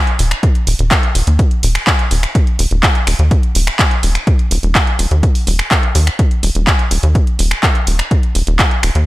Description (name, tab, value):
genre	progressive house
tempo	125 BPM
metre	4/4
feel	straight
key	unclear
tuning	A4 = 438 Hz
part	house drum kit	drums	0.1-9.0 s	finger snaps, handclaps, hi-hat	-17 LUFS	equal	overdrive
part	tight sequencer bass	bass	0.2-9.1 s	Eb1 to Eb2	-13 LUFS	equal	sidechain pumping
part	electronic kick drum	drums	0.4-8.7 s	none	-14 LUFS	equal	overdrive
room	little or no reverb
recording	none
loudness	-11 LUFS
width	side -18 dB against mid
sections	0.0-9.1 A section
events	none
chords	none